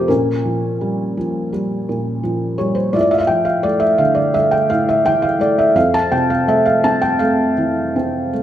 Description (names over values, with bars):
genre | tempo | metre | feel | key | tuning
classical, lyrical solo piano | 84 BPM | 4/4 | rubato | F major | A4 = 436 Hz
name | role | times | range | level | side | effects
felt-muted upright piano | solo | 0.0-8.4 s | F2 to A5 | -14 LUFS | equal | none
room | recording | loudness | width
moderate scoring stage reverb, RT60 1.8 s | minimal, uncompressed stereo recording | -14 LUFS | side -11 dB against mid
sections
0.0-8.4 A section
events
none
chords
0.1 Bbm6; 2.9 Dmadd9/A; 5.8 Fmaj7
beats
| 0.10 0.82 1.53 2.24 | 2.94 3.65 4.35 5.05 | 5.75 6.47 7.20 7.95